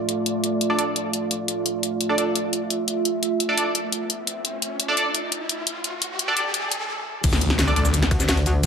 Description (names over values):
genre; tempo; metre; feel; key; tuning
dark technical drum and bass; 172 BPM; 4/4; straight; D minor; A4 = 440 Hz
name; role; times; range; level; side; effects
deep dark ambient pad; sustained chords; 0.0-8.7 s; A3 to E5; -26 LUFS; right 2 dB; chorus, built-in reverb, sidechain pumping
drum and bass drum kit; drums; 0.1-8.7 s; cabasa, crash cymbal, hi-hat, snare drum; -24 LUFS; left 2 dB; none
band-passed chord stab; stabs; 0.7-7.8 s; D4 to D5; -26 LUFS; right 1 dB; chorus, tape echo
riser and impact; sound effects; 4.1-8.6 s; none; -30 LUFS; left 1 dB; none
snarling distorted saw bass; bass; 7.2-8.1 s; D2; -22 LUFS; left 1 dB; distortion, tube saturation, sidechain pumping
electronic kick drum; drums; 7.2-8.7 s; none; -22 LUFS; equal; none
jungle sampler-style drum kit; drums; 7.2-8.7 s; ride cymbal, snare drum; -34 LUFS; equal; none
metallic wobble bass; bass; 8.1-8.7 s; D2; -21 LUFS; left 1 dB; chorus
room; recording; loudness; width
moderate plate reverb, RT60 1.7 s; high-pass filter; -21 LUFS; side -7 dB against mid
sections
0.0-7.2 A section; 7.2-8.7 B section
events
build-up 0.0-7.2; filter sweep on synth stab 0.0-7.2; filter sweep 0.0-7.2; riser 4.1-6.9; break 6.9-7.2; drop 7.2-8.7; impact 7.2-8.6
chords
0.0 Dm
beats
| 0.26 0.61 0.96 1.31 | 1.66 2.01 2.35 2.70 | 3.05 3.40 3.75 4.10 | 4.45 4.80 5.15 5.50 | 5.84 6.19 6.54 6.89 | 7.24 7.59 7.94 8.29 | 8.63